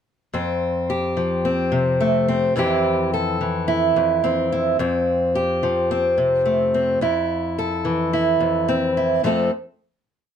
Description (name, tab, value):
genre	highlife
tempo	108 BPM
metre	4/4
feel	swing 53% on 16ths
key	F major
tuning	A4 = 440 Hz
part	fingerpicked acoustic archtop guitar	solo	0.3-9.5 s	F2 to A4	-18 LUFS	equal	none
room	moderate studio ambience, RT60 0.5 s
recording	none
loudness	-18 LUFS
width	side -8 dB against mid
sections	0.3-9.2 groove; 9.2-10.4 final chord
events	none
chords	0.3 F; 2.6 C/F; 4.8 F; 7.0 C/F; 9.2 F